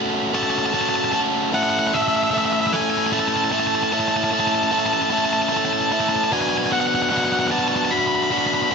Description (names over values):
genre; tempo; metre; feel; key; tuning
rock; 50 BPM (dotted quarters); 6/8; straight; A major; A4 = 439 Hz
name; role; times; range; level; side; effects
biting overdriven guitar; riff; 0.0-8.7 s; B2 to A4; -20 LUFS; right 1 dB; none
octave-fuzz lead guitar; melody; 0.3-8.7 s; E5 to B5; -22 LUFS; left 1 dB; distortion, tape echo
room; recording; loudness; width
light reverb; nothing above 7.9 kHz; -18 LUFS; side -5 dB against mid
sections
0.0-8.7 A section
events
none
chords
0.0 F#m/A; 1.5 A; 6.3 Bm